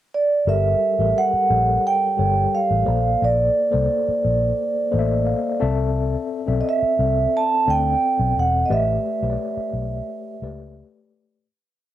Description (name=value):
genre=soul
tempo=87 BPM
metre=4/4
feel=straight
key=unclear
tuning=A4 = 440 Hz
part: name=vibraphone with soft mallets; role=melody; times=0.1-10.7 s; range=D5 to A5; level=-20 LUFS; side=right 4 dB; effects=cassette tape
part: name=mellow tine electric piano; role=accompaniment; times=0.5-11.5 s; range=G3 to A5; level=-26 LUFS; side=left 8 dB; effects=medium stereo tremolo, cassette tape
part: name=vintage muted fingered electric bass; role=bass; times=0.5-10.8 s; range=E1 to D2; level=-22 LUFS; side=left 1 dB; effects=none
room=studio ambience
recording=home recording on cassette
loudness=-18 LUFS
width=side -12 dB against mid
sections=0.0-0.5 pickup bar; 0.5-11.4 verse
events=tine electric piano fill 4.9-6.0; fade-out 8.7-11.4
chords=0.5 Gmadd9; 2.9 Bbmaj9; 5.6 C69; 8.7 A9sus4